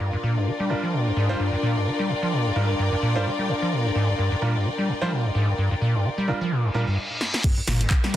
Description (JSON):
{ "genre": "acid house", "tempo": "129 BPM", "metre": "4/4", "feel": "swing 57% on 16ths", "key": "G minor", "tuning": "A4 = 440 Hz", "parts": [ { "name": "warm analog pad", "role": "sustained chords", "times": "0.0-8.2 s", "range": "Bb3 to D4", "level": "-32 LUFS", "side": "left 4 dB", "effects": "chorus, sidechain pumping" }, { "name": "acid bass, square", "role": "riff", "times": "0.0-8.2 s", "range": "G2 to G3", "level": "-23 LUFS", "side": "equal", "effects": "overdrive, lush chorus" }, { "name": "clear studio string section", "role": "texture", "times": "0.0-7.0 s", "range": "F4 to G5", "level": "-29 LUFS", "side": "left 1 dB", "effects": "sidechain pumping" }, { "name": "bright concert grand piano", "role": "stabs", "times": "0.7-8.2 s", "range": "G3 to C5", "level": "-31 LUFS", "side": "right 3 dB", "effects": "digital delay" }, { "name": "reverse cymbal", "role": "sound effects", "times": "6.7-7.4 s", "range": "none", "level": "-29 LUFS", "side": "left 1 dB", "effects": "none" }, { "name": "punchy analog drum machine", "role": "drums", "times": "7.2-8.2 s", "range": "crash cymbal, handclaps, hi-hat, snare drum, toms", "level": "-26 LUFS", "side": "equal", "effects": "none" }, { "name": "electronic kick drum", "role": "drums", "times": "7.4-8.0 s", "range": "none", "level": "-20 LUFS", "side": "equal", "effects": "none" }, { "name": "warm sub bass", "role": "bass", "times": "7.7-8.2 s", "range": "G1", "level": "-26 LUFS", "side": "equal", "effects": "sidechain pumping" } ], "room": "moderate plate reverb, RT60 1.0 s, digital ambience", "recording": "dense, heavily limited modern master", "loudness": "-21 LUFS", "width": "side -12 dB against mid", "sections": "0.0-7.4 A section", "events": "reverse cymbal 6.7-7.4; drum fill 7.2", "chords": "0.0 Gm7; 7.4 Gm", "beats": "| 0.00 0.47 0.93 1.40 | 1.86 2.33 2.79 3.26 | 3.72 4.19 4.65 5.12 | 5.58 6.05 6.51 6.98 | 7.44 7.91" }